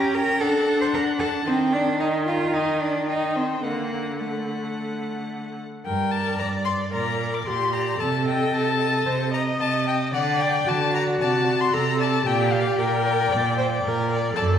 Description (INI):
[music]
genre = quick classical-period movement for string quartet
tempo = 112 BPM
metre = 4/4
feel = straight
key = G minor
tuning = A4 = 439 Hz
[part]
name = rich violin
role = melody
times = 0.0-14.4 s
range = A4 to D6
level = -27 LUFS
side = left 6 dB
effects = none
[part]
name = rich violin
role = second line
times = 0.0-14.5 s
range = D5 to A#5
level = -31 LUFS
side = left 2 dB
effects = none
[part]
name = clear viola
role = accompaniment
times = 0.0-14.6 s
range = D3 to Eb5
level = -26 LUFS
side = equal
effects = none
[part]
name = rich cello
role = bass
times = 0.0-14.6 s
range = F#2 to C5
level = -25 LUFS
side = right 2 dB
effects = none
[sound]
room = wet scoring stage reverb, RT60 1.5 s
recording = heard from further back in the room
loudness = -21 LUFS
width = side -8 dB against mid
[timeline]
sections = 0.0-5.9 A section; 5.9-14.6 B section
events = none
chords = 0.4 D; 1.5 Cm/Eb; 3.6 D; 5.9 Gm; 6.9 Gm/Bb; 8.0 Adim/C; 10.1 D; 11.2 D7/C; 12.3 Gm/Bb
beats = 0.41 0.94 | 1.47 2.00 2.54 3.08 | 3.63 4.19 4.75 5.30 | 5.85 6.40 6.93 7.47 | 8.00 8.53 9.07 9.60 | 10.14 10.67 11.21 11.74 | 12.26 12.79 13.31 13.84 | 14.36